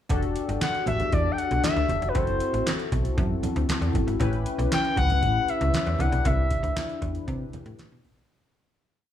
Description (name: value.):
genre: early-eighties boogie funk.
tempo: 117 BPM.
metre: 4/4.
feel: straight.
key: E minor.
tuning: A4 = 441 Hz.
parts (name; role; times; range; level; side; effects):
chorused polysynth; accompaniment; 0.1-8.3 s; C4 to B4; -30 LUFS; left 4 dB; none.
slap-like FM bass; bass; 0.1-8.3 s; E1 to C3; -26 LUFS; equal; none.
booming analog drum machine; drums; 0.1-8.3 s; handclaps, hi-hat, kick drum, snare drum; -28 LUFS; equal; gated reverb.
congas; percussion; 0.1-8.2 s; none; -34 LUFS; right 5 dB; none.
expressive synth lead; melody; 0.6-7.0 s; B4 to G5; -27 LUFS; left 2 dB; chorus, slapback echo.
room: light reverb, digital ambience.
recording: small room reverb.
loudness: -22 LUFS.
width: side -10 dB against mid.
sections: 0.1-8.3 verse.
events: fade-out 6.3-8.3.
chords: 0.1 Em11; 2.2 D7/F# (rootless); 4.2 A7; 6.0 Cmaj9.